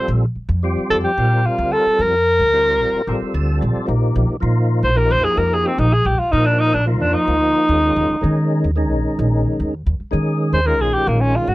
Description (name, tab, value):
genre	electric jazz fusion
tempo	221 BPM (eighths)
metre	7/8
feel	straight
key	Bb major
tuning	A4 = 437 Hz
part	breathy alto saxophone	melody	0.0-11.5 s	Bb3 to C5	-17 LUFS	equal	none
part	percussive tonewheel organ	accompaniment	0.0-11.5 s	Eb3 to A5	-22 LUFS	equal	slow rotary speaker, overdrive, chorus vibrato
part	upright bass	bass	0.1-11.5 s	Ab1 to Eb3	-19 LUFS	equal	none
room	little or no reverb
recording	dry, close 1970s-style studio recording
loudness	-15 LUFS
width	side -18 dB against mid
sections	0.0-3.9 A section; 3.9-11.5 B section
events	tonewheel organ fill 3.1-3.9; alto saxophone solo 3.9-11.5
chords	0.0 Bbmaj9; 3.9 Bbsus4; 7.7 Eb9sus4